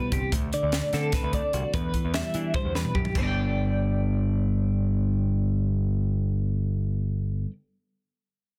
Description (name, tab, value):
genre	math rock and midwest emo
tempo	296 BPM (eighths)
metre	7/8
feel	straight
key	G major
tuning	A4 = 440 Hz
part	clean electric guitar	accompaniment	0.0-7.5 s	D2 to A4	-33 LUFS	equal	none
part	twelve-string electric guitar	arpeggios	0.0-7.5 s	G4 to G5	-34 LUFS	equal	tremolo
part	growling picked electric bass	bass	0.1-7.5 s	G1 to E3	-29 LUFS	equal	overdrive
part	crisp fusion drum kit	drums	0.1-3.2 s	china cymbal, hi-hat, kick drum, snare drum, toms	-32 LUFS	equal	none
room	light reverb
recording	dense, heavily limited modern master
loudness	-26 LUFS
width	mono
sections	0.0-3.2 A section; 3.2-6.0 B section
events	drum fill 2.5-3.2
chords	0.3 D7; 1.7 Em9; 3.2 G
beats	0.12 | 0.32 0.53 0.73 0.93 1.13 1.34 1.54 | 1.74 1.94 2.15 2.35 2.55 2.75 2.96 | 3.16 3.36 3.56 3.77 3.97 4.17 4.37 | 4.57 4.78 4.98 5.18 5.38 5.59 5.79